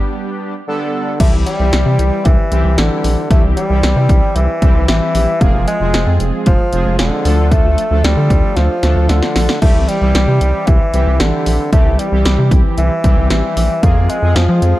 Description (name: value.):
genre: synth-pop.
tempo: 114 BPM.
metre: 4/4.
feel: straight.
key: unclear.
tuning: A4 = 441 Hz.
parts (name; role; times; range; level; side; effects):
analog synth brass; accompaniment; 0.0-14.8 s; E3 to A4; -20 LUFS; equal; chorus.
clear bassoon; melody; 0.7-14.8 s; D3 to Bb3; -18 LUFS; equal; slapback echo.
rubbery square bass; bass; 1.2-14.7 s; E1 to F3; -14 LUFS; equal; none.
punchy analog drum machine; drums; 1.2-14.7 s; crash cymbal, hi-hat, kick drum, snare drum; -15 LUFS; equal; none.
room: light reverb, digital ambience.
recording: dark, warm production.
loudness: -11 LUFS.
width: side -16 dB against mid.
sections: 0.0-1.2 A section; 1.2-14.8 B section.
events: break 0.1-1.2; drum fill 8.6-9.6.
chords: 0.0 G; 1.2 C; 5.4 Fm; 7.3 Dm; 9.6 C; 13.8 Fm.